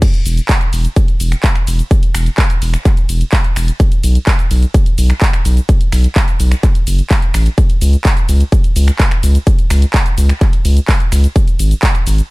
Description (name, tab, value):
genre	EDM, festival progressive house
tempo	127 BPM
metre	4/4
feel	straight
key	unclear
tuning	A4 = 440 Hz
part	big-room dance drum kit	drums	0.0-12.3 s	crash cymbal, finger snaps, handclaps, hi-hat, ride cymbal, shaker	-20 LUFS	right 1 dB	studio reverb
part	electronic kick drum	drums	0.0-11.9 s	none	-12 LUFS	equal	high-pass filter on kick, studio reverb
part	saturated sub bass	bass	0.3-12.2 s	E1 to C#2	-11 LUFS	equal	tube saturation, sidechain pumping
room	little or no reverb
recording	dark, warm production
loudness	-10 LUFS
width	side -23 dB against mid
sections	0.0-12.3 A section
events	drop 0.0-12.3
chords	none